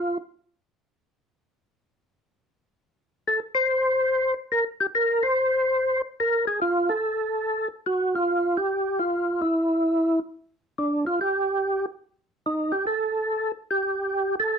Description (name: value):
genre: jazz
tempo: 144 BPM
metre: 4/4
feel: swing 67% on 8ths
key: F major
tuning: A4 = 439 Hz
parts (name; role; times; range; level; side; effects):
- percussive tonewheel organ; solo; 0.0-0.2, 3.3-14.6 s; D4 to C5; -22 LUFS; equal; slow rotary speaker, overdrive, chorus vibrato
room: moderate small room reverb, RT60 0.5 s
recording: dark, warm production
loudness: -22 LUFS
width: side -6 dB against mid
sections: 0.0-10.4 A section; 10.4-14.6 B section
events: tonewheel organ solo 10.4-14.6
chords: none